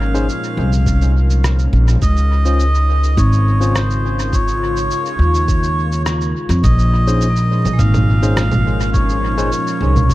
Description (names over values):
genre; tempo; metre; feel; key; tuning
ambient dub; 104 BPM; 4/4; straight; Bb minor; A4 = 440 Hz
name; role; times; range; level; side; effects
melodica; melody; 0.0-10.1 s; C5 to F5; -22 LUFS; equal; dub echo
airy breathy pad; sustained chords; 0.0-10.1 s; Bb2 to Bb4; -25 LUFS; left 1 dB; chorus
upright bass; bass; 0.0-10.1 s; Ab1 to F2; -14 LUFS; equal; none
overdriven tine electric piano; stabs; 0.1-9.5 s; Db4 to C5; -26 LUFS; left 2 dB; dub echo
electronic cabasa, rim click and congas; drums; 0.1-10.1 s; none; -23 LUFS; right 1 dB; studio reverb, dub echo
electronic kick drum; drums; 0.9-10.1 s; none; -17 LUFS; equal; studio reverb
vibraphone with medium hard mallets; arpeggios; 7.3-10.1 s; Ab3 to F4; -27 LUFS; right 2 dB; vintage 12-bit sampler grit, dub echo
room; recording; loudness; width
small room ambience; echo-heavy mix, vinyl crackle; -13 LUFS; side -17 dB against mid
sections
0.0-6.6 A section; 6.6-10.1 B section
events
band accent 6.1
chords
0.0 Bbm11